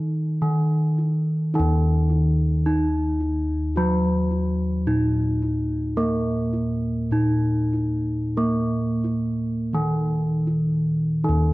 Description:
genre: Javanese gamelan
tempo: 75-109 BPM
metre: 4/4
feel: straight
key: unclear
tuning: A4 = 440 Hz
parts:
  - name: gamelan-type bronze metallophone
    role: accompaniment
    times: 0.0-11.5 s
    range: Eb3 to Eb4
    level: -22 LUFS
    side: right 1 dB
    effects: none
  - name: gamelan-type bossed gongs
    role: bass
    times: 0.0-11.5 s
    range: Eb2 to Bb4-30c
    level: -24 LUFS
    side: left 1 dB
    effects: none
room: wet recital hall reverb, RT60 1.8 s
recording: worn, warbling old tape, cassette tape, warbly pitch drift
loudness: -20 LUFS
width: side -19 dB against mid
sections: 0.0-1.5 A section; 1.5-11.2 B section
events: none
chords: none

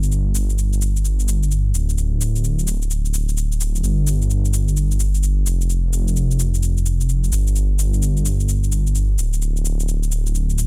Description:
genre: UK garage, two-step garage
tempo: 129 BPM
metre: 4/4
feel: swing 63% on 16ths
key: unclear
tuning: A4 = 440 Hz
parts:
  - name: dark detuned saw bass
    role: bass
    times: 0.0-10.7 s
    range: D1 to G1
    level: -17 LUFS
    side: equal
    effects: none
  - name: shaker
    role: drums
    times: 0.0-10.7 s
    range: none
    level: -28 LUFS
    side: left 4 dB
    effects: none
room: little or no reverb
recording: dry, gritty hardware recording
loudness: -17 LUFS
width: side -29 dB against mid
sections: 0.0-10.7 A section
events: none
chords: none

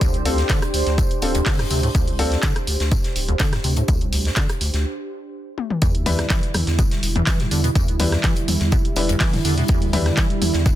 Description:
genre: acid house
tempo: 124 BPM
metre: 4/4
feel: straight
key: E phrygian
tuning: A4 = 441 Hz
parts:
  - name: acid bass, square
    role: riff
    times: 0.0-10.7 s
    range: C2 to E3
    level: -24 LUFS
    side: equal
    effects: tube saturation, wide subtle chorus, dub echo
  - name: electronic kick drum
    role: drums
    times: 0.0-10.8 s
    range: none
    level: -20 LUFS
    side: equal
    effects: none
  - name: huge arena drum kit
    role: drums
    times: 0.0-10.8 s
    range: hi-hat, snare drum, tambourine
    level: -32 LUFS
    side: left 3 dB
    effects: sidechain pumping on hats, high-pass filter on hats, high-pass filter on snare, sidechain pumping on perc, high-pass filter on perc, high-pass filter on room
  - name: punchy analog drum machine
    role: drums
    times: 0.0-10.8 s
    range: handclaps, hi-hat, rim click, toms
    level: -25 LUFS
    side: left 1 dB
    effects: none
  - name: warbly tape-like pad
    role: texture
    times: 0.0-4.9 s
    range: D4 to C5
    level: -27 LUFS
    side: right 1 dB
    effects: chorus, built-in reverb, sidechain pumping
  - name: warm baby grand piano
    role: stabs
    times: 0.3-2.4, 6.1-10.1 s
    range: C4 to B4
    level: -28 LUFS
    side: left 4 dB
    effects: dub echo
  - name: round analog bass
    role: bass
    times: 0.3-10.7 s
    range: D1 to E2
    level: -22 LUFS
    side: equal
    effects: sidechain pumping
  - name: warm analog pad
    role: sustained chords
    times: 5.8-10.8 s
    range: D3 to E4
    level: -26 LUFS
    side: right 3 dB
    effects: chorus, sidechain pumping
room: light reverb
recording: dense, heavily limited modern master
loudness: -17 LUFS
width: side -13 dB against mid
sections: 0.0-5.8 A section; 5.8-10.8 B section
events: break 4.9-5.8; drum fill 5.6; drop 5.8-10.8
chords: 0.0 Dm7; 5.8 Em7

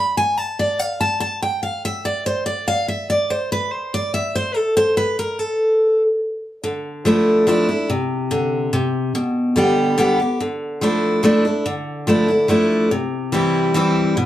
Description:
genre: bluegrass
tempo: 144 BPM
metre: 3/4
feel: straight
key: D dorian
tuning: A4 = 440 Hz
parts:
  - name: picked steel-string acoustic guitar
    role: solo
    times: 0.0-14.3 s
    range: B2 to B5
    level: -17 LUFS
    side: equal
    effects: none
room: wet studio reverb, RT60 0.5 s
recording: heard from further back in the room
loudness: -17 LUFS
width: side -13 dB against mid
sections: 0.0-6.6 A section; 6.6-14.3 B section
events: steel-string acoustic guitar solo 0.0-6.6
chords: 0.0 N.C.; 6.6 Dmadd9; 7.9 Csus2; 9.1 G/B; 10.4 Dmadd9; 12.9 C

